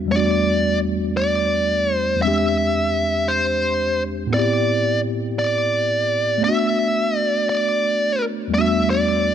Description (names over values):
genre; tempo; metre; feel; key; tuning
R&B; 57 BPM (dotted quarters); 6/8; straight; E minor; A4 = 440 Hz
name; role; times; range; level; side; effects
tine electric piano; accompaniment; 0.0-9.3 s; E2 to G4; -21 LUFS; left 1 dB; medium stereo tremolo
bluesy overdriven lead guitar; melody; 0.1-9.3 s; B#4 to E5; -20 LUFS; right 1 dB; distortion
room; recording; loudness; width
light reverb; none; -17 LUFS; side -9 dB against mid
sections
0.1-9.3 A section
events
none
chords
0.1 Em11; 2.2 E7alt; 4.3 Am7; 6.4 Bm7; 8.5 Em11